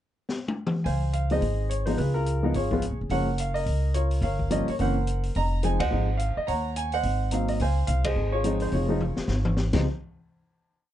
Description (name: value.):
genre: jazz piano trio.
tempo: 213 BPM.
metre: 4/4.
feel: swing 60% on 8ths.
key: Db major.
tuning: A4 = 435 Hz.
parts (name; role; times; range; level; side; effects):
open jazz drum kit; drums; 0.3-9.8 s; crash cymbal, hi-hat, kick drum, ride cymbal, snare drum, toms; -33 LUFS; left 2 dB; none.
warm baby grand piano; melody; 0.8-9.8 s; Fb3 to Bb5; -27 LUFS; equal; none.
upright bass; bass; 0.9-9.8 s; F1 to Eb2; -26 LUFS; equal; none.
room: little or no reverb.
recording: dark, warm production, nothing above 10.9 kHz.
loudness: -24 LUFS.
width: side -12 dB against mid.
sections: 0.0-0.9 pickup bar; 0.9-9.8 A section; 9.8-10.9 final hit.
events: drum fill 0.3-0.9, 9.0-9.6; band accent 5.8, 8.0.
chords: 0.0 N.C.; 0.9 Dbmaj7; 2.0 Db7; 3.1 Gbmaj7; 4.2 Gm7b5; 4.8 Gb7#11; 5.3 Fm7; 6.5 Ebm7; 7.0 Ab7; 7.6 Dbmaj7; 9.8 N.C..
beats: 0.01 0.29 0.57 | 0.85 1.14 1.42 1.70 | 1.98 2.26 2.54 2.82 | 3.10 3.38 3.67 3.95 | 4.23 4.51 4.79 5.07 | 5.35 5.63 5.91 6.19 | 6.47 6.75 7.03 7.31 | 7.59 7.88 8.16 8.44 | 8.72 9.00 9.29 9.57.